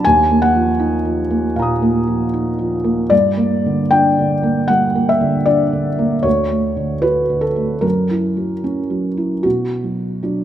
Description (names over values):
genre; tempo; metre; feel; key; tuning
neoclassical minimalist piano; 76 BPM; 4/4; rubato; unclear; A4 = 440 Hz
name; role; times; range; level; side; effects
felt-muted upright piano; solo; 0.0-10.4 s; D2 to D#6; -14 LUFS; equal; none
room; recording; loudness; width
moderate plate reverb, RT60 2.8 s; rough home demo mix; -14 LUFS; side -11 dB against mid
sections
0.0-9.4 A section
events
none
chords
0.0 D#madd9; 3.1 Gm; 6.3 D; 7.8 F#7; 9.4 Bm